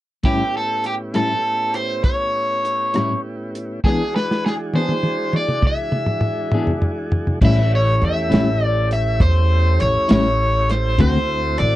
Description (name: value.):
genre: slow blues.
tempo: 67 BPM (dotted quarters).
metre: 12/8.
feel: straight.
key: A mixolydian.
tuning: A4 = 440 Hz.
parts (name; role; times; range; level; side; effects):
clean electric guitar; accompaniment; 0.2-11.2 s; A2 to G#4; -20 LUFS; left 2 dB; harmonic tremolo.
tonewheel organ; sustained chords; 0.2-11.8 s; A2 to G#4; -27 LUFS; right 1 dB; slow rotary speaker.
warm soul drum kit; drums; 0.2-11.7 s; crash cymbal, hi-hat, kick drum, rim click, snare drum, toms; -19 LUFS; equal; vintage 12-bit sampler grit.
biting overdriven guitar; melody; 0.3-11.8 s; G4 to E5; -21 LUFS; equal; none.
upright bass; bass; 7.4-11.8 s; A1 to E2; -18 LUFS; equal; none.
room: light reverb.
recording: worn, warbling old tape, cassette tape, warbly pitch drift.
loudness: -16 LUFS.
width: side -15 dB against mid.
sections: 0.2-7.4 A section; 7.4-11.8 B section.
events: drum fill 3.8-7.4.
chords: 0.2 A7; 3.8 E7; 7.4 A7; 11.0 D7.